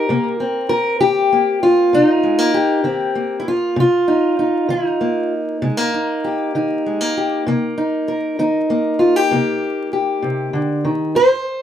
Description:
acoustic country blues, solo or duo; 65 BPM (dotted quarters); 12/8; straight; C minor; A4 = 442 Hz
fingerpicked steel-string acoustic guitar; solo; 0.0-11.6 s; F2 to C5; -15 LUFS; equal
wet studio reverb, RT60 0.6 s; heard from further back in the room, vinyl crackle; -15 LUFS; side -10 dB against mid
0.0-11.6 A section
0.0 Cm7

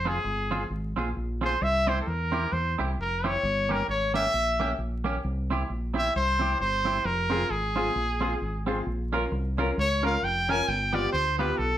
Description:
ska; 132 BPM; 4/4; swing 60% on 8ths; F harmonic minor; A4 = 442 Hz
brilliant trumpet; melody; 0.0-11.8 s; Ab4 to Ab5; -26 LUFS; equal
fingered electric bass; bass; 0.0-11.8 s; F1 to E2; -30 LUFS; equal
semi-hollow electric guitar; accompaniment; 0.1-11.5 s; Bb3 to Bb4; -31 LUFS; right 3 dB; harmonic tremolo
warm upright piano; stabs; 7.3-11.6 s; B3 to Bb4; -32 LUFS; left 2 dB
wet studio reverb, RT60 0.6 s; band playing live in one room, vinyl crackle; -24 LUFS; side -12 dB against mid
0.0-11.8 A section
trumpet solo 0.0-11.8
0.0 Fm; 1.6 C; 3.4 Gdim; 5.2 C; 7.0 Fm; 8.9 Bbm; 10.7 G7

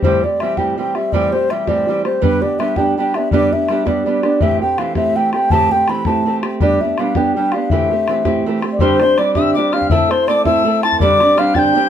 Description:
celtic folk, Celtic jig; 109 BPM (dotted quarters); 6/8; straight; A minor; A4 = 440 Hz
mellow baroque flute; melody; 0.0-11.9 s; B4 to B5; -16 LUFS; left 1 dB
fingerpicked old ladder-braced acoustic guitar; accompaniment; 0.0-11.9 s; G2 to A4; -18 LUFS; right 3 dB
bodhran; percussion; 0.0-11.6 s; -21 LUFS; left 3 dB
mellow wooden whistle; second line; 8.8-11.9 s; C6 to A6; -20 LUFS; left 6 dB
moderate studio reverb, RT60 0.5 s; minimal, uncompressed stereo recording; -13 LUFS; side -9 dB against mid
0.0-8.8 A section; 8.8-11.9 B section
0.0 Am7; 2.2 G; 4.4 Am7; 6.6 G; 7.7 Am7; 8.8 Gsus4; 9.9 Am; 11.0 Gsus4

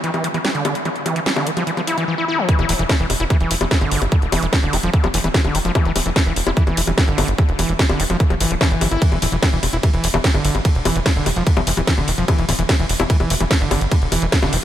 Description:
psychedelic trance; 147 BPM; 4/4; straight; A4 = 440 Hz
overdriven acid bass; riff; 0.0-14.6 s; D3 to E4; -22 LUFS; moving between left 4 dB and right 3 dB; distortion, auto-pan, sidechain pumping, ping-pong delay
garage drum kit; drums; 0.0-14.6 s; bongos, hi-hat, ride cymbal, snare drum; -21 LUFS; left 2 dB
electronic kick drum; drums; 2.5-14.4 s; -16 LUFS; equal
tight sequencer bass; bass; 2.6-14.6 s; D1 to G1; -21 LUFS; equal
light reverb; -16 LUFS; side -11 dB against mid
0.0-2.5 A section; 2.5-14.6 B section
filter sweep on acid bass 0.0-2.5; drop 2.5-14.6
0.0 Dsus2

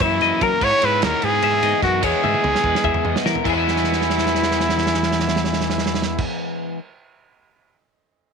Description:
math rock and midwest emo; 296 BPM (eighths); 7/8; straight; E lydian; A4 = 440 Hz
clear trumpet; melody; 0.0-6.2 s; E4 to C#5; -20 LUFS; equal; slapback echo
twelve-string electric guitar; arpeggios; 0.0-6.3 s; E4 to E5; -24 LUFS; left 14 dB; phaser
crunchy overdriven guitar; riff; 0.0-6.8 s; F#2 to G#4; -23 LUFS; equal
modern bright picked electric bass; bass; 0.0-6.2 s; C#2 to F#3; -27 LUFS; equal
loose indie drum kit; drums; 0.0-7.8 s; crash cymbal, kick drum, ride cymbal, snare drum, toms; -25 LUFS; right 5 dB
light reverb; 1960s-style stereo; -17 LUFS; side -5 dB against mid
0.0-3.5 A section; 3.5-6.3 B section
drum fill 2.2-3.5, 3.7-6.2
0.0 F#6; 0.6 Emaj9; 2.0 E6; 3.5 E

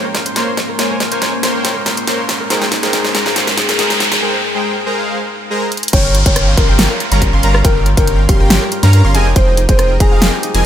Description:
future bass; 140 BPM; 4/4; half-time; A4 = 439 Hz
ethereal airy pad; sustained chords; 0.0-10.7 s; G3 to C6; -26 LUFS; left 1 dB; ensemble chorus, built-in reverb, sidechain pumping
concert harp; arpeggios; 0.0-10.7 s; Eb4 to F5; -24 LUFS; left 1 dB; sidechain pumping, low-pass filter, digital delay
soft supersaw; riff; 0.0-10.7 s; F3 to C6; -19 LUFS; equal; sidechain pumping, digital delay
riser and downlifter; sound effects; 1.3-9.4 s; -22 LUFS; equal
big-room dance drum kit; drums; 0.1-10.6 s; crash cymbal, hi-hat, rim click, snare drum; -17 LUFS; equal; high-pass filter on hats, studio ambience, high-pass filter on snare, high-pass filter on cymbals
dark baby grand piano; melody; 5.9-10.7 s; G4 to Db5; -20 LUFS; left 1 dB; sidechain pumping, digital delay
wide unison pluck; arpeggios; 5.9-10.7 s; F5 to C6; -25 LUFS; equal; sidechain pumping, digital delay
saturated sub bass; bass; 5.9-10.7 s; F1 to G2; -13 LUFS; equal; sidechain pumping
electronic kick drum; drums; 5.9-10.1 s; -13 LUFS; equal; studio ambience
light reverb; -11 LUFS; side -10 dB against mid
0.0-5.9 A section; 5.9-10.7 B section
build-up 0.0-5.9; drum fill 0.0-4.2, 5.7; filter sweep on harp 0.0-5.9; riser 1.3-4.2; break 4.2-5.9; drop 5.9-10.7
0.0 Bbm9; 5.9 Gm7b5; 9.1 Fm11

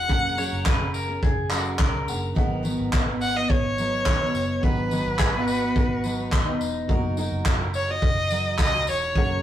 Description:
acoustic pop; 106 BPM; 4/4; straight; G# minor; A4 = 440 Hz
warm violin; melody; 0.0-9.4 s; B4 to F#5; -25 LUFS; equal
felt-muted upright piano; accompaniment; 0.0-9.4 s; A#3 to F#5; -38 LUFS; left 1 dB
picked steel-string acoustic guitar; accompaniment; 0.0-9.4 s; G#2 to B4; -29 LUFS; equal
vintage muted fingered electric bass; bass; 0.0-9.4 s; E1 to D#2; -31 LUFS; equal
soft brush drum kit; drums; 0.1-9.3 s; handclaps, kick drum, tambourine; -24 LUFS; equal
pedal steel guitar; second line; 0.4-7.6 s; D#4 to C#5; -32 LUFS; left 2 dB
moderate studio reverb, RT60 0.6 s; rough rehearsal-room recording, warm saturation; -21 LUFS; side -11 dB against mid
0.0-9.4 A section
0.1 F#add9; 2.4 G#m7; 6.9 D#m/F#

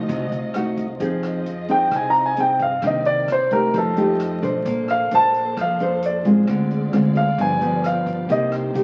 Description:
bossa nova; 132 BPM; 4/4; straight; A4 = 440 Hz
clear concert grand piano; melody; 0.0-8.5 s; A4 to Bb5; -22 LUFS; equal
nylon-string guitar; accompaniment; 0.0-8.8 s; G2 to C5; -24 LUFS; equal
warm studio string section; sustained chords; 0.0-8.8 s; A3 to F5; -36 LUFS; equal
upright bass; bass; 0.0-8.8 s; G1 to G2; -33 LUFS; equal
vintage drum kit; drums; 0.1-8.8 s; hi-hat, kick drum, rim click; -41 LUFS; equal
wet club reverb, RT60 0.8 s; very old 78 rpm record, vinyl crackle; -20 LUFS; mono
0.0-1.0 A section; 1.0-8.8 B section
grand piano solo 1.0-8.8
0.0 F7b9; 1.0 Fm7; 2.8 Cm9; 3.7 F9; 4.6 Bbmaj9; 6.5 Dm7b5; 7.4 G7; 8.3 Cm7

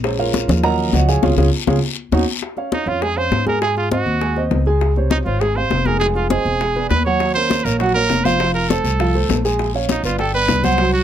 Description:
Afro-Cuban jazz; 201 BPM; 4/4; straight; Bb minor; A4 = 439 Hz
warm grand piano; accompaniment; 0.0-11.0 s; C3 to Bb5; -20 LUFS; right 2 dB
upright bass; bass; 0.0-11.0 s; E1 to Ab2; -20 LUFS; equal
bongos; percussion; 0.0-11.0 s; -27 LUFS; left 8 dB
congas; percussion; 0.0-11.0 s; -23 LUFS; left 5 dB
guiro; percussion; 0.0-2.2, 7.2-11.0 s; -30 LUFS; left 9 dB
bright trumpet; melody; 2.7-11.0 s; Eb4 to Db5; -20 LUFS; right 4 dB
little or no reverb; close, detailed microphones; -15 LUFS; side -10 dB against mid
0.0-2.4 A section; 2.4-11.0 B section
grand piano solo 0.0-2.4; drum fill 1.2-2.4; band accent 1.2-2.4
0.0 Bbm7; 0.6 Ebm7; 1.2 Db; 1.8 Ebm7; 2.4 Bbm9 (rootless); 3.6 Ab7; 4.8 Dbmaj7; 6.0 Fm7; 6.6 E9; 7.2 Ebm9; 8.4 F; 9.6 Bbm7; 10.2 G

